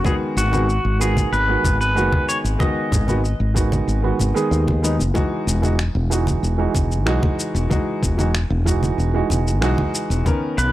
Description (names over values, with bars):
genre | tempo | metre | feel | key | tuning
sunset chillout | 94 BPM | 4/4 | straight | unclear | A4 = 441 Hz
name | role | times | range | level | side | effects
pedal steel guitar | melody | 0.0-4.8, 10.6-10.7 s | F#4 to D#5 | -23 LUFS | left 1 dB | analog delay
clear concert grand piano | accompaniment | 0.0-10.7 s | D#3 to A#4 | -23 LUFS | moving between left 2 dB and right 6 dB | auto-pan, analog delay
electronic kick drum | drums | 0.0-10.4 s | none | -22 LUFS | equal | none
congas | percussion | 0.0-10.4 s | none | -26 LUFS | right 1 dB | none
electronic cabasa and finger snaps | drums | 0.1-10.7 s | none | -28 LUFS | left 2 dB | none
woody fretless electric bass | bass | 0.4-10.7 s | E1 to D#2 | -20 LUFS | equal | none
room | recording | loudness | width
little or no reverb | dry, gritty hardware recording, transformer saturation | -17 LUFS | side -15 dB against mid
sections
0.0-10.7 A section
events
none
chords
0.0 G#m7; 5.2 Emaj9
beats
| 0.05 0.69 1.32 1.96 | 2.60 3.24 3.88 4.52 | 5.15 5.79 6.43 7.07 | 7.71 8.35 8.98 9.62 | 10.26